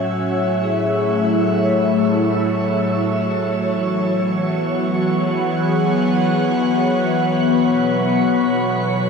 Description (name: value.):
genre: ambient.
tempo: free time.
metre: none.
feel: none.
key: unclear.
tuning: A4 = 439 Hz.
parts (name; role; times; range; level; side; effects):
airy breathy pad; sustained chords; 0.0-9.1 s; A2 to G#5; -17 LUFS; left 2 dB; chorus, phaser.
vibraphone with medium mallets; arpeggios; 0.0-9.1 s; G#4 to F#5; -26 LUFS; left 1 dB; diffuse ambient delay.
analog drone; drone; 0.0-9.1 s; F#3; -23 LUFS; right 2 dB; chorus.
wind-like tuned noise texture; texture; 0.0-9.1 s; C#6; -34 LUFS; right 2 dB; built-in reverb.
room: wet shimmer reverb, RT60 7.2 s.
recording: dark, warm production.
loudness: -16 LUFS.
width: side -5 dB against mid.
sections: 0.0-9.1 A section.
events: fade-in on synth texture 0.0-9.1.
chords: 0.0 A; 3.6 E6; 7.5 B7.